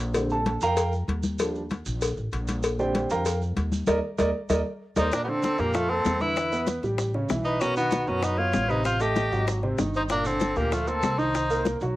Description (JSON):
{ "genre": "Afro-Cuban jazz", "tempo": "193 BPM", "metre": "4/4", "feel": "straight", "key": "Bb major", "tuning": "A4 = 440 Hz", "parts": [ { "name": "upright bass", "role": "bass", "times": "0.0-12.0 s", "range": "G1 to F#2", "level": "-30 LUFS", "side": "equal", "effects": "none" }, { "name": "warm grand piano", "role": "accompaniment", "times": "0.1-12.0 s", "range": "Bb2 to Bb5", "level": "-28 LUFS", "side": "right 2 dB", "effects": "cassette tape, plate reverb" }, { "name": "cowbell and bongos", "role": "percussion", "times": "0.1-12.0 s", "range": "none", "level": "-30 LUFS", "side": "left 4 dB", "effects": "none" }, { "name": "maracas", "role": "percussion", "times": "0.1-12.0 s", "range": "none", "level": "-41 LUFS", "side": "right 5 dB", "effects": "none" }, { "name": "congas", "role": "percussion", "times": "0.2-12.0 s", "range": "none", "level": "-32 LUFS", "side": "left 2 dB", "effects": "none" }, { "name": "edgy tenor saxophone", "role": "melody", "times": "5.0-11.7 s", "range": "A3 to G4", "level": "-27 LUFS", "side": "equal", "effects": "cassette tape, plate reverb" }, { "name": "breathy bright jazz flute", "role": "second line", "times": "5.0-11.7 s", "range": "F4 to Eb5", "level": "-31 LUFS", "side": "left 2 dB", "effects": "cassette tape, plate reverb" } ], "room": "moderate studio reverb, RT60 0.6 s", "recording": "home recording on cassette", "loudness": "-23 LUFS", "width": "side -16 dB against mid", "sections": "0.0-5.1 A section; 5.1-12.0 B section", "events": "grand piano solo 0.0-5.1; band accent 3.9-5.1", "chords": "0.2 Bb69; 1.4 Ebmaj7; 2.6 Bb69; 3.9 Eb5; 5.1 Bbmaj9; 6.4 Em7; 7.0 A9; 7.6 Badd9; 8.9 Am7b5; 9.5 Ab7; 10.1 Gm9; 11.3 Cm7", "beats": "| 0.15 0.46 0.77 1.08 | 1.39 1.70 2.01 2.33 | 2.63 2.95 3.26 3.57 | 3.88 4.19 4.50 4.81 | 5.12 5.43 5.74 6.06 | 6.37 6.68 6.99 7.30 | 7.61 7.92 8.23 8.55 | 8.86 9.17 9.48 9.79 | 10.10 10.41 10.72 11.04 | 11.35 11.66" }